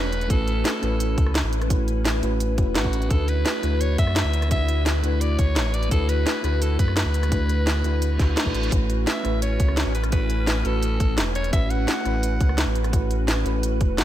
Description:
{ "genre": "liquid drum and bass", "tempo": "171 BPM", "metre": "4/4", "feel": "straight", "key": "A major", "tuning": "A4 = 441 Hz", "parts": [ { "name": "raspy alto saxophone", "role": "melody", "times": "0.0-14.0 s", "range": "F#4 to F#5", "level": "-31 LUFS", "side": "equal", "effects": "dub echo" }, { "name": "mellow FM electric piano", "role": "accompaniment", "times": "0.0-14.0 s", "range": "A3 to B4", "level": "-29 LUFS", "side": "equal", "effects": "chorus, tape echo" }, { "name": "glassy FM pad", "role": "sustained chords", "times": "0.0-14.0 s", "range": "C#4 to B4", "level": "-32 LUFS", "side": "equal", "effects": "ensemble chorus, built-in reverb, sidechain pumping" }, { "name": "sub bass with octave", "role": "bass", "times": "0.0-14.0 s", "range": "E1 to F#2", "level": "-23 LUFS", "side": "equal", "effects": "none" }, { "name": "garage drum kit", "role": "drums", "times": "0.1-14.0 s", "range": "hi-hat, rim click, snare drum", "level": "-27 LUFS", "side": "equal", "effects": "none" }, { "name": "electronic kick drum", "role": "drums", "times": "0.3-13.9 s", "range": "none", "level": "-22 LUFS", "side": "equal", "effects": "none" }, { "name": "reverse cymbal", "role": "sound effects", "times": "8.1-8.7 s", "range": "none", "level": "-34 LUFS", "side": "right 3 dB", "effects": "none" } ], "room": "digital ambience", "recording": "none", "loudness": "-20 LUFS", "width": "side -12 dB against mid", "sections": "0.0-14.0 A section", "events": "reverse cymbal 8.1-8.7", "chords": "0.0 A69; 3.1 D69; 8.7 A69", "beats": "| 0.30 0.65 1.00 1.35 | 1.70 2.05 2.40 2.76 | 3.11 3.46 3.81 4.16 | 4.51 4.86 5.21 5.56 | 5.91 6.26 6.62 6.97 | 7.32 7.67 8.02 8.37 | 8.72 9.07 9.42 9.77 | 10.12 10.47 10.83 11.18 | 11.53 11.88 12.23 12.58 | 12.93 13.28 13.63 13.98" }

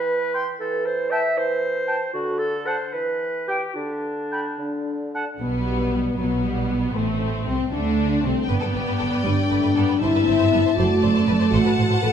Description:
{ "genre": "classical", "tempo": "71-81 BPM (dotted quarters)", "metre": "6/8", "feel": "rubato", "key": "G major", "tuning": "A4 = 437 Hz", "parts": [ { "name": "clear clarinet", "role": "second line", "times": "0.0-5.1 s", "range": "D4 to E5", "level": "-26 LUFS", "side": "left 1 dB", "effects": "none" }, { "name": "mellow bassoon", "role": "accompaniment", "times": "0.0-5.3 s", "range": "D3 to E3", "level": "-27 LUFS", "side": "right 3 dB", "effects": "none" }, { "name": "concert flute", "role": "second line", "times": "0.3-5.3 s", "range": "G5 to C6", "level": "-32 LUFS", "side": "left 1 dB", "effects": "none" }, { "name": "warm oboe", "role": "second line", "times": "0.3-5.2 s", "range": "F#5 to G5", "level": "-32 LUFS", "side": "right 2 dB", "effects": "none" }, { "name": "mellow French horn section", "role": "sustained chords", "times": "4.6-12.1 s", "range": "A3 to A4", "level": "-23 LUFS", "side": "left 4 dB", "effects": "none" }, { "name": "rich symphonic violin section", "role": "melody", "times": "5.4-12.1 s", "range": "A3 to A5", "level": "-32 LUFS", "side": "left 3 dB", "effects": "none" }, { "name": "warm symphonic violin section", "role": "second line", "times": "5.4-12.1 s", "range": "A3 to F#5", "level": "-28 LUFS", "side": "left 4 dB", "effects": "none" }, { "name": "rich symphonic viola section", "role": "accompaniment", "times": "5.4-12.1 s", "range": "F#3 to C4", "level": "-25 LUFS", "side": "right 4 dB", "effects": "none" }, { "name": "rich studio cello section", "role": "bass", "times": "5.4-12.1 s", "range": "F#2 to D3", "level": "-26 LUFS", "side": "right 2 dB", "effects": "none" }, { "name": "warm symphonic double bass section", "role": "bass", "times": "5.4-12.1 s", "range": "F#1 to D2", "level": "-27 LUFS", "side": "right 4 dB", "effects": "none" } ], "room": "wet recital hall reverb, RT60 1.5 s", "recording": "none", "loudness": "-20 LUFS", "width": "side -8 dB against mid", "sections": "0.0-5.4 A section; 5.4-12.1 B section", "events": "none", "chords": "0.0 C/E; 2.1 D; 2.9 Em; 3.8 N.C.; 5.4 G/B; 7.0 D5/A; 8.5 G; 10.0 Am7/G; 10.8 D7; 11.5 F#m/A", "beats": "| 0.60 1.36 | 2.13 2.93 | 3.75 4.58 | 5.41 6.19 | 6.96 7.73 | 8.50 9.26 | 10.02 10.78 | 11.53" }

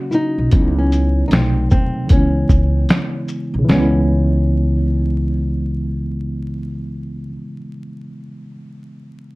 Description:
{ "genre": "lo-fi hip hop", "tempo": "76 BPM", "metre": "4/4", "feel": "swing 62% on 16ths", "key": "C# minor", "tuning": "A4 = 440 Hz", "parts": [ { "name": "mellow tine electric piano", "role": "accompaniment", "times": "0.0-9.4 s", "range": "B2 to F#4", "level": "-21 LUFS", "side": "equal", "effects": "medium stereo tremolo, cassette tape, low-pass filter" }, { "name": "nylon-string guitar", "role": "melody", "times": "0.1-7.4 s", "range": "C4 to E4", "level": "-22 LUFS", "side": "left 1 dB", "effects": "low-pass filter" }, { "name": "lo-fi sampler-style drum kit", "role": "drums", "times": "0.1-3.9 s", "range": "finger snaps, hi-hat, kick drum, shaker, snare drum", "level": "-15 LUFS", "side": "equal", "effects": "none" }, { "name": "upright bass", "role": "bass", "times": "0.4-7.4 s", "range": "B1 to D#2", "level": "-19 LUFS", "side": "equal", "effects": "none" } ], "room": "light reverb", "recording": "dark, warm production, vinyl crackle", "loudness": "-14 LUFS", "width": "side -22 dB against mid", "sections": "0.0-3.7 A section; 3.7-6.8 B section", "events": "none", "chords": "0.0 D#m7; 0.5 C#m11; 1.3 B7b9; 2.1 C#m7", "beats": "| 0.52 1.31 2.10 2.89 | 3.68 4.47 5.26 6.05" }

